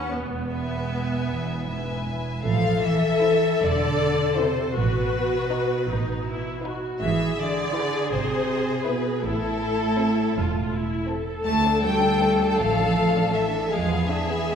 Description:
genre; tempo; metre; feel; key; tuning
classical, slow romantic movement for string orchestra; 53 BPM (dotted quarters); 6/8; rubato; A minor; A4 = 440 Hz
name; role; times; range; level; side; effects
rich chamber violin section; melody; 0.0-14.6 s; A4 to A5; -28 LUFS; left 4 dB; none
rich chamber violin section; second line; 0.0-14.6 s; G#3 to E5; -32 LUFS; left 1 dB; none
rich chamber viola section; accompaniment; 0.0-14.6 s; B3 to A4; -26 LUFS; left 2 dB; none
rich chamber cello section; bass; 0.1-14.6 s; E2 to A3; -27 LUFS; right 3 dB; none
rich studio double bass section; bass; 0.1-14.6 s; E1 to E2; -29 LUFS; right 3 dB; none
room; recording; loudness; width
wet scoring stage reverb, RT60 1.6 s; minimal, uncompressed stereo recording; -21 LUFS; side -7 dB against mid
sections
0.0-2.4 A section; 2.4-14.6 B section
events
none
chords
0.1 E; 2.4 Am; 4.8 B7/A; 7.0 E7/G#; 9.2 Am; 11.4 Dm; 13.7 E7b9

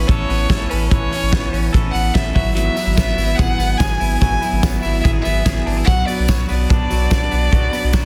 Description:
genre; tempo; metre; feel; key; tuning
jangly indie pop; 145 BPM; 4/4; straight; A major; A4 = 440 Hz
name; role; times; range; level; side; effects
warm violin; melody; 0.0-8.1 s; B4 to G#5; -25 LUFS; equal; none
electric guitar through a small old amp; accompaniment; 0.0-8.1 s; G#2 to B4; -30 LUFS; equal; none
twelve-string electric guitar; arpeggios; 0.0-8.1 s; E3 to A4; -27 LUFS; equal; none
saturated sub bass; bass; 0.0-8.1 s; G#1 to B1; -22 LUFS; equal; none
loose indie drum kit; drums; 0.1-8.0 s; hi-hat, kick drum, ride cymbal, snare drum; -21 LUFS; equal; none
tambourine; percussion; 2.8-8.0 s; none; -40 LUFS; equal; none
room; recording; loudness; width
light reverb, small room ambience; dense, heavily limited modern master; -17 LUFS; mono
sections
0.0-8.1 A section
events
none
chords
0.0 Aadd9; 2.4 Eadd9/G#; 5.9 Bm

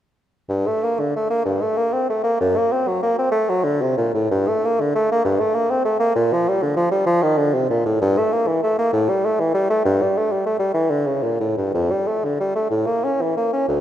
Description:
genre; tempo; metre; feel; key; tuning
classical, baroque-style fantasia for unaccompanied bassoon; 58-67 BPM (dotted quarters); 6/8; rubato; G minor; A4 = 435 Hz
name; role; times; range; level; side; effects
warm bassoon; solo; 0.5-13.8 s; D2 to C#4; -17 LUFS; equal; none
room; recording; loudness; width
wet concert hall reverb, RT60 2.2 s; none; -17 LUFS; side -11 dB against mid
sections
0.5-13.8 A section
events
none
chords
none

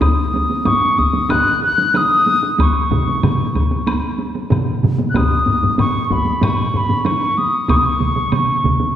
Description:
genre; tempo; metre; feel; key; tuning
japanese traditional, taiko drum ensemble; 94 BPM; 4/4; straight; unclear; A4 = 440 Hz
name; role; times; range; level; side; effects
mellow hollow wooden piccolo; melody; 0.0-9.0 s; B5 to F#6; -17 LUFS; left 1 dB; none
taiko ensemble; percussion; 0.0-8.9 s; none; -21 LUFS; right 2 dB; none
taiko ensemble; percussion; 0.0-8.8 s; none; -20 LUFS; left 1 dB; none
woodblock; percussion; 0.0-8.5 s; none; -31 LUFS; left 1 dB; none
taiko ensemble; percussion; 0.7-7.0 s; none; -21 LUFS; left 2 dB; none
taiko ensemble; percussion; 2.9-8.8 s; none; -21 LUFS; right 3 dB; none
room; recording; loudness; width
wet scoring stage reverb, RT60 2.0 s; heard from further back in the room; -14 LUFS; side -10 dB against mid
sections
0.0-9.0 A section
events
speeding up 0.0-9.0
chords
none

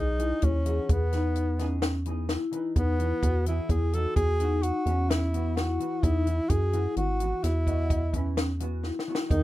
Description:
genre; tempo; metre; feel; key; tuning
progressive instrumental, band music in an uneven meter; 128 BPM; 7/4; straight; unclear; A4 = 438 Hz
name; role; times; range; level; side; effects
warm tenor saxophone; melody; 0.0-9.4 s; B3 to A4; -31 LUFS; equal; none
hollow-body jazz guitar; accompaniment; 0.0-9.3 s; E3 to B4; -39 LUFS; right 1 dB; double-tracked left and right
vibraphone with soft mallets; arpeggios; 0.0-9.4 s; B3 to D#5; -32 LUFS; left 3 dB; none
rubbery square bass; bass; 0.0-9.4 s; G#1 to F#2; -27 LUFS; equal; none
compact cocktail drum kit; drums; 0.2-9.4 s; hi-hat, kick drum, snare drum; -30 LUFS; equal; none
breathy trombone; second line; 9.3-9.4 s; D#3; -28 LUFS; right 4 dB; none
room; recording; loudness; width
little or no reverb; rough home demo mix; -24 LUFS; side -15 dB against mid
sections
0.0-9.4 A section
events
drum fill 8.8-9.3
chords
0.0 Emaj7; 2.8 Bsus4/E

